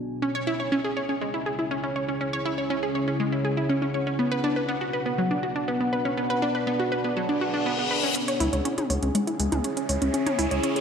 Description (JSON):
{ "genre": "melodic techno", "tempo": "121 BPM", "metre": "4/4", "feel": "straight", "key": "C# phrygian", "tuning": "A4 = 439 Hz", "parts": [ { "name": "deep dark ambient pad", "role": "sustained chords", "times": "0.0-10.8 s", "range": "B2 to G#5", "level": "-29 LUFS", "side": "equal", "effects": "chorus, built-in reverb" }, { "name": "wide unison pluck", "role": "arpeggios", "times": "0.2-10.8 s", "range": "F#3 to C#5", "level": "-26 LUFS", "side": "equal", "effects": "ping-pong delay" }, { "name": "reverse cymbal and riser", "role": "sound effects", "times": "7.4-10.8 s", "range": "none", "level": "-32 LUFS", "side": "left 4 dB", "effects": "none" }, { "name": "house drum kit", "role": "drums", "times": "8.2-10.8 s", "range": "hi-hat, toms", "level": "-30 LUFS", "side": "equal", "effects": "none" }, { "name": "gritty driven synth bass", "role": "bass", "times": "8.4-10.6 s", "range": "C#2", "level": "-27 LUFS", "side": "equal", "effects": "tube saturation" } ], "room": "wet lush hall reverb, RT60 2.1 s", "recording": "bright 1980s-style digital production", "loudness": "-23 LUFS", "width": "side -7 dB against mid", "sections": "0.0-8.2 A section; 8.2-10.8 B section", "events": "filter sweep on ambient pad 0.0-8.2; reverse cymbal 7.4-8.2; build-up 8.2-10.8; riser 8.2-10.8", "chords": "0.2 C#m; 4.2 Bm; 8.2 C#m", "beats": "| 0.22 0.72 1.21 1.71 | 2.21 2.70 3.20 3.69 | 4.19 4.69 5.18 5.68 | 6.17 6.67 7.17 7.66 | 8.16 8.65 9.15 9.64 | 10.14 10.64" }